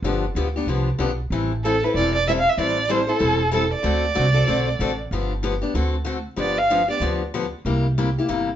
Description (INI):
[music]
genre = acoustic string swing (jazz manouche)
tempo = 189 BPM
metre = 4/4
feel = swing 60% on 8ths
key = G mixolydian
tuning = A4 = 440 Hz
[part]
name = picked steel-string acoustic guitar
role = accompaniment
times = 0.0-8.5 s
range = C3 to A4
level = -24 LUFS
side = left 4 dB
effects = none
[part]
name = upright bass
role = bass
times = 0.0-8.6 s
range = E1 to D2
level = -24 LUFS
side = right 1 dB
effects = none
[part]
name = warm violin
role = melody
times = 1.6-7.0 s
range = A4 to F5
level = -21 LUFS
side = right 2 dB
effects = none
[sound]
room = wet studio reverb, RT60 0.5 s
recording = heard from further back in the room, nothing above 7.5 kHz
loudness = -19 LUFS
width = side -10 dB against mid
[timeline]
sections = 0.0-6.4 A section; 6.4-8.6 B section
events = violin solo 6.4-8.6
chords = 0.0 G7; 1.3 Am7; 3.8 D7; 5.1 G7; 5.7 D7; 6.4 G7; 7.7 C7